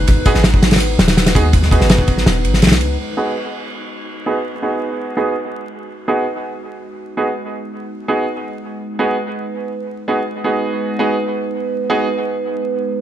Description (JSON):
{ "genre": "drum and bass, jungle", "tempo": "165 BPM", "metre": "4/4", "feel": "straight", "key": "G# minor", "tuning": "A4 = 444 Hz", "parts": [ { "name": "warbly tape-like pad", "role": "sustained chords", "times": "0.0-13.0 s", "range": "G#3 to B4", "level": "-24 LUFS", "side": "right 1 dB", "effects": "chorus, built-in reverb" }, { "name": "warm 808-style bass", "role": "bass", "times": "0.0-3.0 s", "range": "D#1 to D#2", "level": "-16 LUFS", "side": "equal", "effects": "none" }, { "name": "loose indie drum kit", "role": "drums", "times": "0.1-2.9 s", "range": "kick drum, ride cymbal, snare drum", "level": "-14 LUFS", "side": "equal", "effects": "none" }, { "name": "bright grand piano", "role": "stabs", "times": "0.3-12.1 s", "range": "B3 to G#4", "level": "-20 LUFS", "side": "right 2 dB", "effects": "low-pass filter, dub echo" } ], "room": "moderate echo chamber reverb, RT60 1.3 s, studio reverb", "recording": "vinyl crackle", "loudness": "-15 LUFS", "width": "side -11 dB against mid", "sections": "0.0-3.0 A section; 3.0-13.0 B section", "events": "kick drops out 2.3-3.0; filter sweep on ambient pad 3.0-13.0; filter sweep on grand piano 3.0-13.0", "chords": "0.0 G#m7", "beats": "| 0.08 0.45 0.81 1.17 | 1.54 1.90 2.26 2.63 | 2.99 3.35 3.72 4.08 | 4.45 4.81 5.17 5.54 | 5.90 6.26 6.63 6.99 | 7.35 7.72 8.08 8.45 | 8.81 9.17 9.54 9.90 | 10.26 10.63 10.99 11.35 | 11.72 12.08 12.45 12.81" }